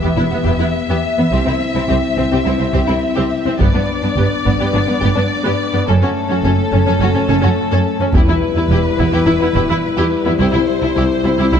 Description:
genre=cinematic, epic orchestral film score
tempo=106 BPM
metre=4/4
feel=straight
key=E minor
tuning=A4 = 440 Hz
part: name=clear symphonic violin section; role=melody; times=0.0-11.6 s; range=A4 to E5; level=-22 LUFS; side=left 4 dB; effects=none
part: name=warm symphonic violin section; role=second line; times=0.0-11.6 s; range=B3 to A4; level=-24 LUFS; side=left 4 dB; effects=none
part: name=rich symphonic viola section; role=accompaniment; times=0.0-11.6 s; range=B3 to E4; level=-21 LUFS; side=equal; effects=none
part: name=mellow French horn section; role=sustained chords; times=0.0-11.6 s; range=G3 to G4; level=-20 LUFS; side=left 4 dB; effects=none
part: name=warm symphonic cello section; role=bass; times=0.0-11.6 s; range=C2 to G2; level=-19 LUFS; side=right 2 dB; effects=none
part: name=rich symphonic double bass section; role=bass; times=0.2-11.6 s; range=E1 to C2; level=-20 LUFS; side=right 3 dB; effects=none
part: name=taiko ensemble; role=drums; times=3.6-4.7, 8.1-9.2 s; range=none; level=-19 LUFS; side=equal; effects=none
room=wet scoring stage reverb, RT60 1.8 s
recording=dark, warm production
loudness=-13 LUFS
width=side -8 dB against mid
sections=0.0-11.6 A section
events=build-up 0.0-11.6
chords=0.0 Em; 1.3 C; 3.6 G; 5.9 F#m; 8.1 Em; 10.4 C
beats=0.18 0.75 | 1.32 1.89 2.46 3.03 | 3.60 4.17 4.74 5.31 | 5.88 6.45 7.01 7.58 | 8.14 8.71 9.27 9.84 | 10.40 10.97 11.53

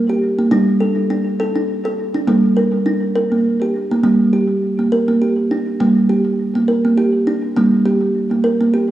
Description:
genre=world meditative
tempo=102 BPM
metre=3/4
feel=swing 56% on 16ths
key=G minor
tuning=A4 = 441 Hz
part: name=kalimba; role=solo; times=0.0-8.9 s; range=G3 to Bb4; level=-14 LUFS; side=right 1 dB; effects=tape echo
room=wet concert hall reverb, RT60 1.9 s, small room reverb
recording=worn, warbling old tape, cassette tape, warbly pitch drift, studio ambience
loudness=-14 LUFS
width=side -13 dB against mid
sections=0.0-4.0 A section; 4.0-8.9 B section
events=none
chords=0.0 Gm; 0.5 D5/G; 2.3 Gm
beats=| 0.52 1.10 1.69 | 2.27 2.86 3.45 | 4.04 4.62 5.21 | 5.80 6.38 6.97 | 7.56 8.15 8.74

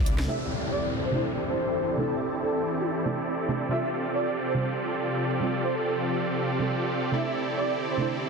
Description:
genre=future bass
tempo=140 BPM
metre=4/4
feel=swing 56% on 16ths, half-time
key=C major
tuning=A4 = 440 Hz
part: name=supersaw chords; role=riff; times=0.0-8.3 s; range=C4 to D5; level=-28 LUFS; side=right 1 dB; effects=low-pass filter, ping-pong delay
part: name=breathy flute-like synth lead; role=melody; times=0.3-8.1 s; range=A4 to E5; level=-31 LUFS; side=right 1 dB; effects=analog chorus, tape echo
part: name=soft round pluck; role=accompaniment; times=0.3-8.3 s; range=C3 to A4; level=-32 LUFS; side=right 3 dB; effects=chorus, ping-pong delay
part: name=ethereal airy pad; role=sustained chords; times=1.2-8.3 s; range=C3 to E5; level=-34 LUFS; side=left 1 dB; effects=ensemble chorus, built-in reverb
part: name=downlifter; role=sound effects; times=0.3-3.7 s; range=none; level=-34 LUFS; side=left 4 dB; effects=none
room=moderate lush hall reverb, RT60 1.6 s, digital ambience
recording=dense, heavily limited modern master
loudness=-25 LUFS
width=side -4 dB against mid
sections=0.3-8.3 A section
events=filter sweep on supersaw synth 0.3-8.3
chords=0.3 C69; 3.7 G9sus4/C; 7.1 C69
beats=| 0.28 0.71 1.14 1.56 | 1.99 2.42 2.85 3.28 | 3.71 4.13 4.56 4.99 | 5.42 5.85 6.28 6.71 | 7.13 7.56 7.99

